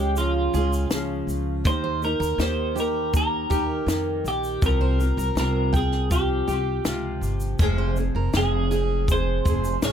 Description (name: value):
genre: acoustic pop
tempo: 81 BPM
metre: 4/4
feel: straight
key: F minor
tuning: A4 = 440 Hz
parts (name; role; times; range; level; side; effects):
- twelve-string electric guitar; melody; 0.0-9.9 s; F4 to Db5; -26 LUFS; right 1 dB; analog chorus, plate reverb, tape echo
- nylon-string guitar; accompaniment; 0.0-9.9 s; F2 to Ab4; -28 LUFS; equal; double-tracked left and right, plate reverb
- fingerpicked steel-string acoustic guitar; arpeggios; 0.0-9.8 s; Ab3 to G5; -35 LUFS; right 7 dB; plate reverb, tape echo
- upright bass; bass; 0.0-9.9 s; F1 to F2; -26 LUFS; equal; none
- compact cocktail drum kit; drums; 0.2-9.9 s; kick drum, shaker, snare drum; -25 LUFS; left 1 dB; none
room: light reverb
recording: none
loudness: -21 LUFS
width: side -8 dB against mid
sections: 0.0-9.9 A section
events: none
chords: 0.0 Db; 1.7 Eb; 4.6 Csus4; 7.6 Fm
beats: 0.17 0.91 | 1.65 2.39 3.14 3.88 | 4.62 5.37 6.11 6.85 | 7.60 8.34 9.08 9.83